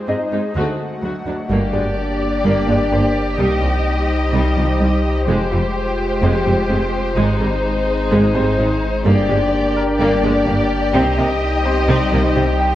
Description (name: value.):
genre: cinematic, hybrid orchestral and electronic film score.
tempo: 127 BPM.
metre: 4/4.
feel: straight.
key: G phrygian.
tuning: A4 = 441 Hz.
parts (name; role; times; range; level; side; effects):
airy breathy pad; sustained chords; 0.0-12.8 s; G3 to G5; -24 LUFS; equal; chorus.
rich chamber viola section; accompaniment; 0.1-12.4 s; F3 to Ab4; -25 LUFS; equal; none.
soft round pluck; arpeggios; 0.1-12.5 s; C3 to Ab4; -26 LUFS; right 3 dB; chorus, tape echo.
clear symphonic cello section; bass; 0.1-12.4 s; C2 to C3; -22 LUFS; right 1 dB; none.
bright grand piano; texture; 0.1-12.8 s; Ab3 to G5; -28 LUFS; left 1 dB; tape echo.
dark symphonic violin section; melody; 1.5-12.8 s; C5 to Eb5; -24 LUFS; left 2 dB; none.
clear symphonic violin section; second line; 1.5-12.8 s; Eb4 to G4; -25 LUFS; left 2 dB; none.
dark French horn section; sustained chords; 1.5-12.8 s; G3 to G4; -23 LUFS; left 2 dB; none.
clear symphonic double bass section; bass; 1.5-12.4 s; F1 to C2; -24 LUFS; right 2 dB; none.
pure sine sub bass; bass; 1.5-12.8 s; F1 to C2; -23 LUFS; equal; none.
room: moderate recital hall reverb, RT60 1.8 s.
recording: worn, warbling old tape, cassette tape, warbly pitch drift.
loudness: -15 LUFS.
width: side -13 dB against mid.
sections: 0.0-1.5 A section; 1.5-12.8 B section.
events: none.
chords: 0.0 Ab; 0.6 D; 1.5 Gm; 3.4 Cm; 5.3 Fmadd9; 7.2 Ab; 9.1 Gm; 10.9 Cm.